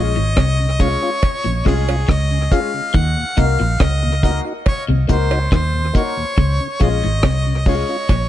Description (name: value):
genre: roots reggae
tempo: 70 BPM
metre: 4/4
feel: straight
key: unclear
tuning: A4 = 441 Hz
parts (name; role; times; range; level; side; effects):
- clear harmonica; melody; 0.0-8.3 s; Ab4 to Gb5; -22 LUFS; left 1 dB; dub echo
- mellow tonewheel organ; accompaniment; 0.0-8.0 s; Eb2 to Gb4; -27 LUFS; left 1 dB; slow rotary speaker
- clean electric guitar; riff; 0.0-8.2 s; Ab2 to Eb3; -27 LUFS; left 4 dB; none
- warm grand piano; stabs; 0.0-8.0 s; Ab3 to Bb4; -26 LUFS; left 6 dB; none
- vintage muted fingered electric bass; bass; 0.0-8.3 s; Ab1 to Eb2; -18 LUFS; equal; none
- deep reggae drum kit; drums; 0.4-8.3 s; hi-hat, kick drum, rim click; -17 LUFS; equal; none
- cowbell; percussion; 0.4-8.3 s; none; -28 LUFS; right 6 dB; none
room: little or no reverb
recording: echo-heavy mix, nothing above 10.3 kHz, faint mains hum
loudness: -15 LUFS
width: side -12 dB against mid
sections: 0.0-8.3 A section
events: none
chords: 0.0 Db; 2.9 Ebm; 6.4 Db